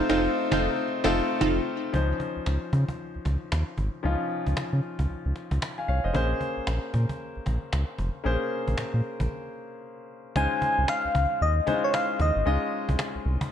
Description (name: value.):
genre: R&B, new jack swing.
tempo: 114 BPM.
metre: 4/4.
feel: swing 60% on 16ths.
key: unclear.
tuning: A4 = 438 Hz.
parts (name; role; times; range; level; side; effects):
soft struck synth lead; melody; 0.0-1.4, 10.4-12.7 s; Db5 to Ab5; -27 LUFS; left 1 dB; chorus, ping-pong delay.
clear baby grand piano; accompaniment; 0.0-13.5 s; F3 to Ab5; -29 LUFS; left 3 dB; none.
funky polysynth comp; stabs; 0.0-1.6 s; Eb4 to A4; -28 LUFS; right 5 dB; chorus, ping-pong delay.
round analog bass; bass; 0.0-13.4 s; F1 to Db3; -26 LUFS; equal; none.
cajon; drums; 0.1-13.5 s; none; -33 LUFS; equal; vintage 12-bit sampler grit.
room: light reverb, studio reverb.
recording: bright 1980s-style digital production.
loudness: -24 LUFS.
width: side -9 dB against mid.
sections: 0.0-1.9 A section; 1.9-10.4 B section; 10.4-13.5 A section.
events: band accent 0.0-1.9; break 9.3-10.4.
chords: 0.0 F7; 1.9 Dbmaj9; 6.1 Bbm9; 10.4 Dbmaj9.